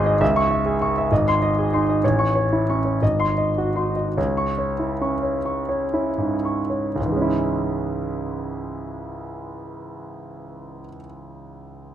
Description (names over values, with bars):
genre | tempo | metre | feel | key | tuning
classical, romantic character piece for solo piano | 38-67 BPM (dotted quarters) | 6/8 | rubato | C# minor | A4 = 435 Hz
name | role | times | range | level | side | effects
clear concert grand piano | solo | 0.0-11.9 s | G#1 to C#6 | -20 LUFS | equal | none
room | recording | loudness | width
light reverb | close, detailed microphones | -19 LUFS | side -10 dB against mid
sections
0.0-7.0 A section; 7.0-11.9 B section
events
slowing down 1.1-7.0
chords
0.2 C#m; 1.1 G#; 2.0 A; 3.0 G#7; 4.2 C#m